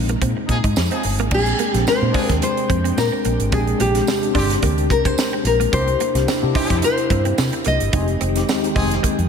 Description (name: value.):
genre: polished 1980s jazz-funk pop.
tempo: 109 BPM.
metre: 4/4.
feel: swing 54% on 16ths.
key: unclear.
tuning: A4 = 440 Hz.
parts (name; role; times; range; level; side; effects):
nylon-string guitar; melody; 0.0-9.3 s; G4 to Eb5; -22 LUFS; left 3 dB; slapback echo, ping-pong delay.
mellow tine electric piano; accompaniment; 0.0-9.3 s; Ab3 to G5; -24 LUFS; left 2 dB; medium stereo tremolo, lush chorus.
chorused pulse-width pad; sustained chords; 0.0-9.3 s; C3 to G5; -31 LUFS; right 2 dB; none.
vintage muted fingered electric bass; bass; 0.0-9.3 s; F1 to C3; -21 LUFS; equal; none.
direct-recorded clean electric guitar; riff; 0.1-9.1 s; Bb3 to Eb4; -29 LUFS; right 7 dB; ensemble chorus, slapback echo.
tight funk drum kit; drums; 0.1-9.3 s; crash cymbal, hi-hat, kick drum, snare drum; -23 LUFS; right 1 dB; none.
warm horn section; second line; 0.5-8.9 s; D3 to Ab4; -29 LUFS; equal; slapback echo.
tambourine; percussion; 0.8-8.6 s; none; -34 LUFS; right 9 dB; none.
room: moderate lush hall reverb, RT60 1.9 s, small room ambience.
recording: big arena sound.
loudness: -16 LUFS.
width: side -6 dB against mid.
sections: 0.0-1.3 A section; 1.3-9.3 B section.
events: band accent 0.0-1.3.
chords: 0.0 Bb13; 5.7 C7; 7.9 Fm9.